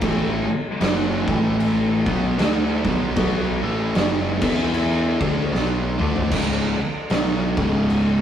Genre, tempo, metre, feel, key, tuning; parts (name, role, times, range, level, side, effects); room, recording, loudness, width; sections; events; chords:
stoner and doom metal; 76 BPM; 4/4; swing 59% on 8ths; A4 = 440 Hz
biting overdriven guitar; riff; 0.0-8.2 s; C#2 to E4; -26 LUFS; equal
thick fuzz guitar; riff; 0.0-8.2 s; C#2 to E4; -26 LUFS; left 5 dB; distortion
thick fuzz guitar; riff; 0.0-8.2 s; C#2 to E4; -26 LUFS; right 5 dB; distortion
fuzz picked electric bass; bass; 0.0-8.2 s; C#1 to E2; -27 LUFS; equal; overdrive
oversized low-tuned drum kit; drums; 0.0-8.1 s; crash cymbal, kick drum, snare drum, toms; -23 LUFS; equal
moderate small room reverb, RT60 0.5 s; rough rehearsal-room recording, tube saturation; -18 LUFS; side -9 dB against mid
0.0-6.3 A section; 6.3-8.2 B section
drum fill 5.5-6.3
0.0 A5; 4.3 E5; 5.1 Bm7; 6.3 C#5